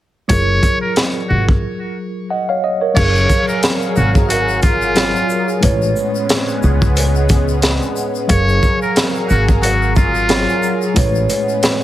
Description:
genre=hip hop, boom-bap hip-hop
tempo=90 BPM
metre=4/4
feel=swing 56% on 16ths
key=F# major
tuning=A4 = 441 Hz
part: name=trumpet with metal mute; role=melody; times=0.3-10.9 s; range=E#4 to C#5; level=-19 LUFS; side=equal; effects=high-pass filter, low-pass filter, plate reverb, digital delay
part: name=tine electric piano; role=accompaniment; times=0.3-11.8 s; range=A2 to F#5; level=-20 LUFS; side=equal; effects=medium stereo tremolo, high-pass filter, low-pass filter
part: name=upright bass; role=bass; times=0.3-11.2 s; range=F#1 to C#2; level=-17 LUFS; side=equal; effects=none
part: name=crunchy breakbeat drum kit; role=drums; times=0.3-11.8 s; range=crash cymbal, hi-hat, kick drum, shaker, snare drum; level=-16 LUFS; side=equal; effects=none
part: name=lush unison pad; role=sustained chords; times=3.0-11.8 s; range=F#3 to E#5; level=-22 LUFS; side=equal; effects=chorus, phaser, high-pass filter, low-pass filter
part: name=tube shaker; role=percussion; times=3.0-11.8 s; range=none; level=-35 LUFS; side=left 7 dB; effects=none
room=light reverb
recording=heavily compressed radio sound, multiband compression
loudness=-13 LUFS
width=side -13 dB against mid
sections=0.3-3.0 A section; 3.0-11.8 B section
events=break 1.6-3.0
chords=0.3 F#maj9; 5.6 Amaj9; 8.3 F#maj9; 11.0 Amaj9

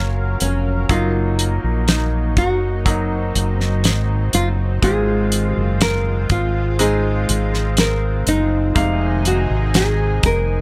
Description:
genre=pop ballad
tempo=61 BPM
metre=4/4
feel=straight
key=unclear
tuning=A4 = 439 Hz
part: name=nylon-string guitar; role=melody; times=0.0-10.6 s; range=Db4 to Bb4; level=-24 LUFS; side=equal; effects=plate reverb
part: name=clear baby grand piano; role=accompaniment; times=0.0-10.6 s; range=Ab2 to F5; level=-27 LUFS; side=equal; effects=plate reverb
part: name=lush unison pad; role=sustained chords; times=0.0-10.6 s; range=Eb3 to F5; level=-30 LUFS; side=equal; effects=chorus, plate reverb
part: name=fingered electric bass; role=bass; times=0.0-10.6 s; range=F1 to Bb1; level=-22 LUFS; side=equal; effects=none
part: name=damped 70s drum kit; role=drums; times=0.4-10.5 s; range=hi-hat, kick drum, snare drum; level=-21 LUFS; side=equal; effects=none
room=light reverb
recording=none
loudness=-18 LUFS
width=mono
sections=0.0-10.6 A section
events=none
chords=0.0 Gbmaj7; 0.9 Ebm/Gb; 4.8 Ab6; 8.8 Fm7

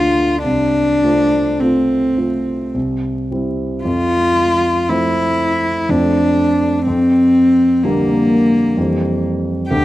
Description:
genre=classical, romantic duo for cello and grand piano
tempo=50-64 BPM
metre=3/4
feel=rubato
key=F major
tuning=A4 = 440 Hz
part: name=warm cello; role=melody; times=0.0-9.8 s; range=Bb3 to G4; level=-14 LUFS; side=left 1 dB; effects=none
part: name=dark grand piano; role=accompaniment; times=0.0-9.8 s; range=C2 to F4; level=-18 LUFS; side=right 1 dB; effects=none
room=light reverb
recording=close, detailed microphones, vinyl crackle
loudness=-13 LUFS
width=side -15 dB against mid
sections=0.0-3.8 A section; 3.8-9.8 B section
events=none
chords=0.4 F/C; 2.7 C; 3.8 F; 6.9 Gm7/F; 8.8 C7/F

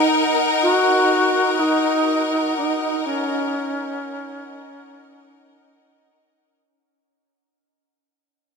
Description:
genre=ambient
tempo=free time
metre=none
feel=none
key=unclear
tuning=A4 = 442 Hz
part: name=rich symphonic string section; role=sustained chords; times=0.0-6.6 s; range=D#4 to F#5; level=-20 LUFS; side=left 1 dB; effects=none
part: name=reedy alto flute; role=melody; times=0.6-6.1 s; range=C#4 to F#4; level=-20 LUFS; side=equal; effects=tape echo
room=wet cathedral reverb, RT60 7.0 s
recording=none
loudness=-17 LUFS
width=side -5 dB against mid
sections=0.0-6.6 A section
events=fade-out 0.0-6.6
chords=0.0 D#m7

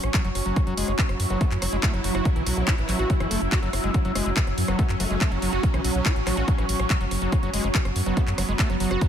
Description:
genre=psychedelic trance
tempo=142 BPM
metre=4/4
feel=straight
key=unclear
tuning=A4 = 439 Hz
part: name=swarming drone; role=sustained chords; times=0.0-9.1 s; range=F#3 to E4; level=-31 LUFS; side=right 1 dB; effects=built-in reverb, sidechain pumping
part: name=round analog bass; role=bass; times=0.0-9.0 s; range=F#1 to F#2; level=-27 LUFS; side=equal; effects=none
part: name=big-room dance drum kit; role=drums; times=0.0-9.1 s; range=handclaps, hi-hat, rim click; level=-30 LUFS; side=equal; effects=overdrive
part: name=deep dark ambient pad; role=texture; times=0.0-9.1 s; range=C#4 to E6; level=-31 LUFS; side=left 1 dB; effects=chorus, built-in reverb, sidechain pumping
part: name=overdriven acid bass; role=riff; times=0.1-9.1 s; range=E3 to F#4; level=-30 LUFS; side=moving between left 4 dB and right 6 dB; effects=distortion, auto-pan, cassette tape, sidechain pumping, dub echo
part: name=electronic kick drum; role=drums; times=0.1-9.1 s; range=none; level=-23 LUFS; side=equal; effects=none
part: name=formant-sweep wobble bass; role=second line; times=1.3-8.2 s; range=E3 to B3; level=-41 LUFS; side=left 4 dB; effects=none
room=light reverb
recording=none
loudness=-21 LUFS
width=side -9 dB against mid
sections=0.0-9.1 A section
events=none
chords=0.0 F#5

